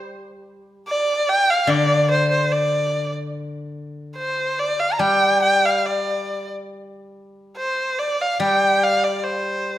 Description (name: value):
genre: chinese traditional, Chinese chamber ensemble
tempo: 72 BPM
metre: 4/4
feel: rubato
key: unclear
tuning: A4 = 441 Hz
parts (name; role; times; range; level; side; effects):
- steel-string zither; accompaniment; 0.0-9.8 s; D3 to G3; -23 LUFS; left 2 dB; none
- rich erhu; melody; 0.9-9.8 s; C5 to Bb5; -19 LUFS; equal; none
room: wet recital hall reverb, RT60 1.5 s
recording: none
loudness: -17 LUFS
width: side -13 dB against mid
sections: 0.0-9.8 A section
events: none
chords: none